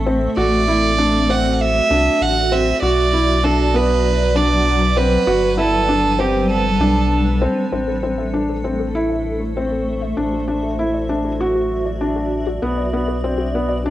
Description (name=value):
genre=piano and strings electronica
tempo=98 BPM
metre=4/4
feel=straight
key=A dorian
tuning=A4 = 439 Hz
part: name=granular cloud pad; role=sustained chords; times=0.0-13.9 s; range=F#3 to F#5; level=-23 LUFS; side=equal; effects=built-in reverb, plate reverb
part: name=warm sub bass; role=bass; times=0.0-13.9 s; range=G1 to C2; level=-22 LUFS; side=equal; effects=none
part: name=felt-muted upright piano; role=riff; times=0.1-13.9 s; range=B3 to F#4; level=-20 LUFS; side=left 1 dB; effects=analog delay
part: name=clear violin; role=melody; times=0.4-7.4 s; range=G4 to F#5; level=-18 LUFS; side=right 5 dB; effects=plate reverb
part: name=warbly dusty pluck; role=arpeggios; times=7.9-13.8 s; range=F#4 to E5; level=-30 LUFS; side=left 5 dB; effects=none
room=moderate small room reverb, RT60 0.5 s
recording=home recording on cassette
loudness=-15 LUFS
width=side -14 dB against mid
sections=0.0-7.7 A section; 7.7-13.9 B section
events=none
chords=0.0 Dadd9/A; 2.8 Bm; 5.3 Gadd9; 7.7 Am; 10.2 Dadd9/A; 12.6 Bm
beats=| 0.37 0.98 1.60 2.21 | 2.82 3.43 4.05 4.66 | 5.27 5.88 6.50 7.11 | 7.72 8.33 8.94 9.56 | 10.17 10.78 11.39 12.01 | 12.62 13.23 13.84